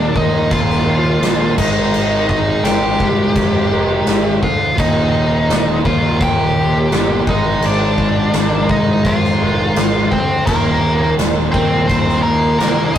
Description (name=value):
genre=quiet-loud alternative rock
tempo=84 BPM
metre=4/4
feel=straight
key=Eb major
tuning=A4 = 440 Hz
part: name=nasal lead guitar with a parked wah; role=melody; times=0.0-13.0 s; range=Bb3 to G5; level=-18 LUFS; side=equal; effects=overdrive
part: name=thick fuzz guitar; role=riff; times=0.0-13.0 s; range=Eb2 to Ab3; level=-22 LUFS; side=left 2 dB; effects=distortion
part: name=thick fuzz guitar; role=riff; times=0.0-13.0 s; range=Eb2 to Ab3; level=-18 LUFS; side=right 1 dB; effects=distortion
part: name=fuzz picked electric bass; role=bass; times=0.0-13.0 s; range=Eb1 to F2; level=-22 LUFS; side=equal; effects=overdrive
part: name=big rock drum kit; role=drums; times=0.2-13.0 s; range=crash cymbal, kick drum, snare drum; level=-18 LUFS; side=equal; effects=none
room=moderate booth ambience, RT60 0.2 s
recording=rough rehearsal-room recording, warm saturation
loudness=-13 LUFS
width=side -10 dB against mid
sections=0.0-13.0 A section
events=none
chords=0.0 Eb5; 1.6 Ab5; 4.8 Eb; 7.3 Ab; 10.5 Eb5